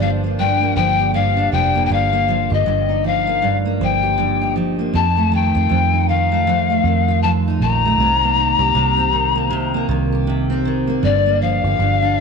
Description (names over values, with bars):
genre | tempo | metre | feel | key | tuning
acoustic pop | 79 BPM | 4/4 | swing 60% on 16ths | F mixolydian | A4 = 439 Hz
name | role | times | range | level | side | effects
breathy polished pan flute | melody | 0.0-12.2 s | D5 to Bb5 | -18 LUFS | left 9 dB | none
fingerpicked steel-string acoustic guitar | accompaniment | 0.0-12.2 s | F2 to G4 | -20 LUFS | right 3 dB | double-tracked left and right
vintage muted fingered electric bass | bass | 0.0-12.2 s | F1 to F2 | -20 LUFS | right 2 dB | none
room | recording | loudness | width
moderate echo chamber reverb, RT60 1.7 s, studio reverb | none | -15 LUFS | side -5 dB against mid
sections
0.0-12.2 A section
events
none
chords
0.0 Gm7; 1.9 Ebadd9/G; 4.9 F7; 8.0 Cm7; 11.0 Gm7